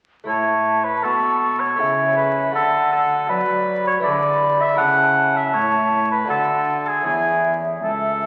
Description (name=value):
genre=classical, baroque-style sonata movement with continuo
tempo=79 BPM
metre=3/4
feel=straight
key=A major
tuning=A4 = 440 Hz
part: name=lute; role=accompaniment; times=0.2-8.3 s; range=E2 to A4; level=-30 LUFS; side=equal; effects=none
part: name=warm oboe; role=melody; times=0.3-8.3 s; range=G#4 to F#5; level=-22 LUFS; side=equal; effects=none
part: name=mellow hollow baroque flute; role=second line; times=0.3-8.3 s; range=D5 to C#6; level=-24 LUFS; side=equal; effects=none
part: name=warm cello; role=bass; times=0.3-8.3 s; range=C#2 to F#3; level=-30 LUFS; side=equal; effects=none
room=wet recital hall reverb, RT60 1.4 s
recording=very old 78 rpm record, vinyl crackle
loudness=-19 LUFS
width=mono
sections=0.3-8.3 A section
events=none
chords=0.3 A; 1.8 A/C#; 2.6 D; 4.0 E7/D; 4.8 A/C#; 6.3 D; 7.1 A/E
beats=| 0.28 1.04 1.80 | 2.55 3.30 4.04 | 4.78 5.53 6.29 | 7.06 7.83